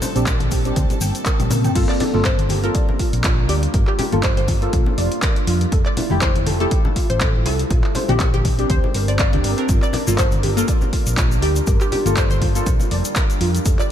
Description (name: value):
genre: deep house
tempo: 121 BPM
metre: 4/4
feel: swing 56% on 16ths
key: G dorian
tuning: A4 = 440 Hz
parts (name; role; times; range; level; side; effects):
- deep dark ambient pad; sustained chords; 0.0-13.9 s; G3 to Bb4; -27 LUFS; equal; chorus, built-in reverb, sidechain pumping
- soft round pluck; arpeggios; 0.0-13.8 s; E4 to G5; -30 LUFS; right 3 dB; ensemble chorus, sidechain pumping, tape echo
- punchy analog drum machine; drums; 0.0-13.9 s; crash cymbal, handclaps, hi-hat, toms; -26 LUFS; equal; none
- congas; percussion; 0.0-12.9 s; none; -29 LUFS; left 3 dB; none
- egg shaker; percussion; 0.0-1.7, 9.7-13.9 s; none; -31 LUFS; left 3 dB; none
- clear studio violin section; texture; 0.0-1.8 s; A4 to A5; -37 LUFS; left 2 dB; sidechain pumping
- deep mellow chord stab; stabs; 0.2-12.7 s; A3 to Bb4; -26 LUFS; left 2 dB; chorus, sidechain pumping, tape echo
- hollow-body short-scale fingered electric bass; bass; 0.2-13.7 s; F1 to Bb2; -21 LUFS; equal; sidechain pumping
- electronic kick drum; drums; 0.3-13.8 s; none; -19 LUFS; equal; none
- hollow square pluck; melody; 1.9-13.9 s; G4 to D5; -27 LUFS; left 1 dB; wide subtle chorus, ping-pong delay
room: light reverb, digital ambience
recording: none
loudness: -16 LUFS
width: side -10 dB against mid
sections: 0.0-1.8 A section; 1.8-13.9 B section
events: drum fill 1.4-1.8; drop 1.8-13.9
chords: 0.0 Bb69; 1.8 Gm7; 5.5 Fmaj9; 7.7 Bb69; 9.7 Gm7; 13.4 Fmaj9